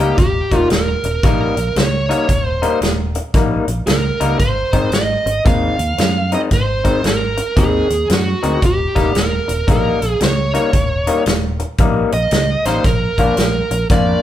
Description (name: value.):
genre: electric blues shuffle.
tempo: 114 BPM.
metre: 4/4.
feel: swing 64% on 8ths.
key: Eb mixolydian.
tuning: A4 = 439 Hz.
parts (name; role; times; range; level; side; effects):
smooth overdriven lead guitar; melody; 0.0-14.2 s; Gb4 to F5; -19 LUFS; right 2 dB; none.
electric guitar through a small old amp; riff; 0.0-14.2 s; Eb3 to F4; -20 LUFS; left 4 dB; none.
fingered electric bass; bass; 0.0-14.1 s; Eb1 to Gb2; -20 LUFS; equal; none.
natural country drum kit; drums; 0.2-14.1 s; hi-hat, kick drum, snare drum; -18 LUFS; equal; none.
room: moderate large studio reverb, RT60 1.1 s.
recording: band playing live in one room.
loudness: -14 LUFS.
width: side -12 dB against mid.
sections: 0.0-14.2 A section.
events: none.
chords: 0.0 Eb7; 4.4 Ab7; 8.6 Eb7; 12.8 Bb.